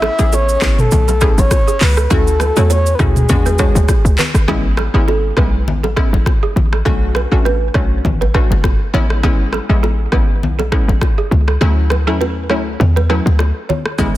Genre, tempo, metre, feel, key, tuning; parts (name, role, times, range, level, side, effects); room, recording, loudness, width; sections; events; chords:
afrobeats; 101 BPM; 4/4; swing 55% on 16ths; A major; A4 = 435 Hz
breathy flute-like synth lead; melody; 0.0-4.2 s; G#4 to E5; -18 LUFS; equal; chorus, tape echo
analog pluck; accompaniment; 0.0-14.2 s; F#3 to G#4; -21 LUFS; left 2 dB; chorus
balafon; riff; 0.0-14.1 s; G#4 to C#5; -23 LUFS; right 7 dB; tape echo
short 808-style bass; bass; 0.0-14.2 s; F#1 to E2; -15 LUFS; equal
afro-pop drum kit; drums; 0.0-14.1 s; handclaps, hi-hat, kick drum, rim click, shaker, toms; -16 LUFS; equal
bongos and congas; percussion; 0.0-14.1 s; -23 LUFS; left 5 dB
digital ambience; dense, heavily limited modern master; -12 LUFS; side -15 dB against mid
0.0-4.5 A section; 4.5-14.2 B section
break 4.5-14.0; kick muted 11.6-14.0
0.0 Amaj7; 2.1 Dmaj7; 3.3 E7; 4.5 Amaj7; 6.9 Bm7; 8.9 Amaj7; 11.6 Dmaj7